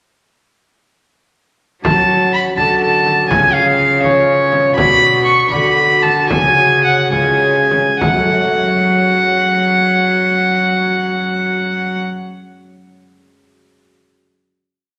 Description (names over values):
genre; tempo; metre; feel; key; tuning
classical, renaissance-style consort dance; 66-82 BPM (dotted quarters); 6/8; straight; F# harmonic minor; A4 = 440 Hz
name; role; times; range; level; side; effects
concert harp; accompaniment; 1.8-12.3 s; F#2 to F#5; -23 LUFS; equal; none
warm trombone; accompaniment; 1.8-12.0 s; E#4 to F#4; -25 LUFS; equal; none
rich cello; bass; 1.8-12.0 s; B2 to F#3; -23 LUFS; equal; none
frame drum; percussion; 1.8-8.3 s; none; -24 LUFS; equal; none
rich violin; melody; 1.9-12.0 s; C#5 to C#6; -15 LUFS; equal; none
room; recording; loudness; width
wet recital hall reverb, RT60 1.4 s; none; -13 LUFS; mono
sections
1.8-8.0 A section; 8.0-11.6 final chord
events
slowing down 4.0-8.0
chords
1.8 F#m; 3.3 C#; 4.8 Bm; 6.3 C#sus4; 7.1 C#; 8.0 F#m